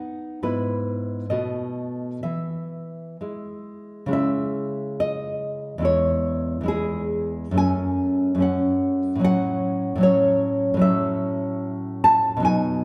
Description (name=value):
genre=romantic piece for solo classical guitar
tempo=61-76 BPM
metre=2/4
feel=rubato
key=E major, C# minor from 4.1 s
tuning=A4 = 441 Hz
part: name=nylon-string guitar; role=solo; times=0.0-12.8 s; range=E2 to A5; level=-24 LUFS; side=equal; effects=none
room=moderate concert hall reverb, RT60 1.8 s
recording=recorded in a church or concert hall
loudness=-23 LUFS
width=mono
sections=0.0-4.1 A section; 4.1-12.8 B section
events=none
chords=0.4 E/G#; 1.3 B7; 2.2 E; 4.1 C#m; 5.8 C#m/E; 7.5 F#m; 9.2 F#m/A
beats=| 0.43 1.29 | 2.22 3.18 | 4.11 4.97 | 5.82 6.66 | 7.55 8.39 | 9.22 10.01 | 10.83 11.64 | 12.47